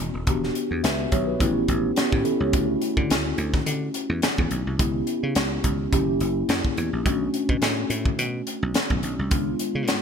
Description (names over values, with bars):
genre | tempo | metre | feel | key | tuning
polished 1980s jazz-funk pop | 106 BPM | 4/4 | swing 54% on 16ths | unclear | A4 = 439 Hz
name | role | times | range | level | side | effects
mellow tine electric piano | accompaniment | 0.0-10.0 s | G#3 to E5 | -26 LUFS | equal | medium stereo tremolo, wide subtle chorus
dry thumbed slap bass | bass | 0.0-10.0 s | D#1 to D3 | -27 LUFS | right 1 dB | none
crisp fusion drum kit | drums | 0.3-10.0 s | hi-hat, kick drum, snare drum | -25 LUFS | equal | gated reverb
room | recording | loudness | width
moderate plate reverb, RT60 2.1 s | bright 1980s-style digital production | -21 LUFS | side -7 dB against mid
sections
0.0-10.0 A section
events
none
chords
0.3 Em9; 1.4 A7; 2.5 Dmaj9; 4.8 C#m7b5; 5.9 F#7b9; 7.1 Bm7; 9.3 C#7b9